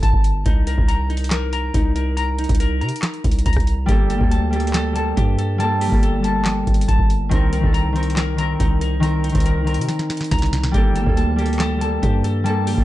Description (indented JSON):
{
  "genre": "hip hop, trap",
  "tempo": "140 BPM",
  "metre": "4/4",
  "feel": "half-time",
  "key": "G minor",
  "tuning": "A4 = 440 Hz",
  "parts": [
    { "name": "clean electric guitar", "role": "arpeggios", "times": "0.0-12.8 s", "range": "Eb4 to Bb5", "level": "-26 LUFS", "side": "left 2 dB", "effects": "lush chorus, low-pass filter, ping-pong delay" },
    { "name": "distorted 808-style bass", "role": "bass", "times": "0.0-12.8 s", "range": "G1 to C3", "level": "-21 LUFS", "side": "equal", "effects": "distortion" },
    { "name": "booming analog drum machine", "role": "drums", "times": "0.0-12.8 s", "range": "handclaps, hi-hat, kick drum, rim click, snare drum", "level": "-20 LUFS", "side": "equal", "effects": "none" },
    { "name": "concert harp", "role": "accompaniment", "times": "3.9-12.8 s", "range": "Eb3 to Bb4", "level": "-22 LUFS", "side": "left 1 dB", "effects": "low-pass filter" }
  ],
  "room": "digital ambience",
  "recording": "dark, warm production, nothing above 11.0 kHz",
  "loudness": "-16 LUFS",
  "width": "side -15 dB against mid",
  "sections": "0.0-10.7 A section; 10.7-12.8 A section",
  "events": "drum fill 9.9-10.7",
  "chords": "0.5 Cm7; 3.9 Gmadd9; 7.3 Cm7; 10.7 Gmadd9",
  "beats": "0.03 | 0.46 0.89 1.31 1.74 | 2.17 2.60 3.03 3.46 | 3.89 4.31 4.74 5.17 | 5.60 6.03 6.46 6.89 | 7.31 7.74 8.17 8.60 | 9.03 9.46 9.89 10.31 | 10.74 11.17 11.60 12.03 | 12.46"
}